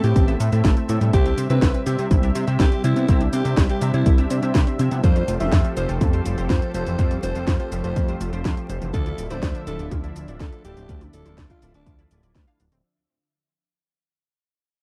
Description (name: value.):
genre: italo disco.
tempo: 123 BPM.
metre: 4/4.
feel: straight.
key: unclear.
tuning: A4 = 441 Hz.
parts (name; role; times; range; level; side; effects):
raspy alto saxophone; melody; 0.0-12.1 s; D4 to E5; -31 LUFS; equal; none.
lush unison pad; sustained chords; 0.0-12.8 s; D3 to E5; -33 LUFS; equal; chorus.
unison pluck; arpeggios; 0.0-12.8 s; E3 to D5; -35 LUFS; equal; tape echo.
direct-recorded clean electric guitar; stabs; 0.0-12.6 s; A2 to F5; -37 LUFS; equal; ensemble chorus.
chorused synth bass; bass; 0.0-12.8 s; D1 to C3; -25 LUFS; equal; none.
house drum kit; drums; 0.0-12.8 s; cabasa, hi-hat, snare drum, toms; -30 LUFS; equal; overdrive, small room ambience.
electronic kick drum; drums; 0.2-12.4 s; none; -22 LUFS; equal; overdrive, small room ambience.
room: little or no reverb.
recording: dry, close 1970s-style studio recording, vinyl crackle.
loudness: -21 LUFS.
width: mono.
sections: 0.0-12.8 A section.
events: fade-out 5.0-12.8.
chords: 0.0 Am; 1.1 C; 5.0 Fadd9; 8.9 Dmadd9.